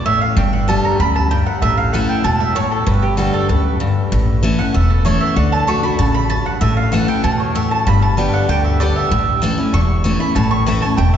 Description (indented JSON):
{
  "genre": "bluegrass",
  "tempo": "192 BPM",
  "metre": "4/4",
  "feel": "straight",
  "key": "A mixolydian",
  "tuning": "A4 = 440 Hz",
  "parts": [
    { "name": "picked steel-string acoustic guitar", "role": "accompaniment", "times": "0.0-11.2 s", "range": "E2 to G4", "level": "-18 LUFS", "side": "left 2 dB", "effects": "none" },
    { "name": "mandolin", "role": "stabs", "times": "0.0-11.2 s", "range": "F#4 to C#6", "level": "-19 LUFS", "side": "right 3 dB", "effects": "none" },
    { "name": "upright bass", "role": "bass", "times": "0.0-11.2 s", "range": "E1 to E2", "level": "-18 LUFS", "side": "equal", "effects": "none" }
  ],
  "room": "wet cathedral reverb, RT60 5.5 s",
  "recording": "recorded in a church or concert hall, nothing above 7.9 kHz",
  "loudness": "-14 LUFS",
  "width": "side -9 dB against mid",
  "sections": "0.0-11.2 A section",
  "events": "mandolin solo 0.0-11.2",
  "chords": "0.4 G; 1.6 A; 2.9 G; 4.1 A; 5.4 D; 6.6 A; 7.9 G; 9.1 A"
}